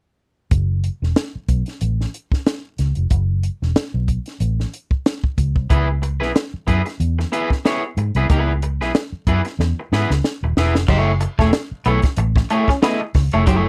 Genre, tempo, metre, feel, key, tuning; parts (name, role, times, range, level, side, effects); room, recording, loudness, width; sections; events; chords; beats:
funk; 93 BPM; 4/4; swing 56% on 16ths; F# minor; A4 = 440 Hz
vintage muted fingered electric bass; bass; 0.5-13.7 s; D#1 to G#2; -21 LUFS; equal
compact cocktail drum kit; drums; 0.5-13.6 s; crash cymbal, hi-hat, kick drum, snare drum; -22 LUFS; equal
electric guitar at the edge of break-up; accompaniment; 5.7-13.7 s; A3 to D#5; -24 LUFS; equal
electric guitar at the edge of break-up; riff; 10.9-13.6 s; F#3 to C#4; -23 LUFS; equal
little or no reverb; dry, close 1970s-style studio recording; -20 LUFS; mono
0.5-10.9 A section; 10.9-13.7 B section
drum fill 9.6-10.9
0.5 F#m; 5.7 C#m7; 10.9 F#m9
| 0.51 1.16 1.81 2.46 | 3.11 3.76 4.41 5.06 | 5.70 6.35 7.00 7.65 | 8.30 8.95 9.59 10.24 | 10.89 11.53 12.18 12.83 | 13.47